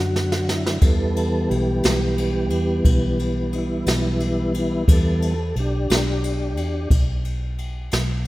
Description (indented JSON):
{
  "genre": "slow blues",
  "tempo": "59 BPM (dotted quarters)",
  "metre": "12/8",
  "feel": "straight",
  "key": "unclear",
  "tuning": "A4 = 440 Hz",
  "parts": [
    { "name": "tonewheel organ", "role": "sustained chords", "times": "0.0-6.9 s", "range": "D3 to A4", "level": "-23 LUFS", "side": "equal", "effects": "slow rotary speaker, chorus vibrato" },
    { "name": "vintage muted fingered electric bass", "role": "bass", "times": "0.0-8.3 s", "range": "B1 to F#2", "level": "-24 LUFS", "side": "equal", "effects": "none" },
    { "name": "jazz brush drum kit", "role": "drums", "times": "0.2-8.3 s", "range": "kick drum, ride cymbal, snare drum", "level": "-21 LUFS", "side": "equal", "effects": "none" }
  ],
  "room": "light reverb, small room reverb",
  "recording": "rough home demo mix",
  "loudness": "-19 LUFS",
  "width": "side -18 dB against mid",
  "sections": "0.0-8.3 A section",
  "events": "drum fill 0.0-0.8; tonewheel organ solo 0.0-8.3",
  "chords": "0.0 Bm (rootless); 0.8 Em",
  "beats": "| 0.82 1.83 2.85 3.87 | 4.88 5.89 6.91 7.92"
}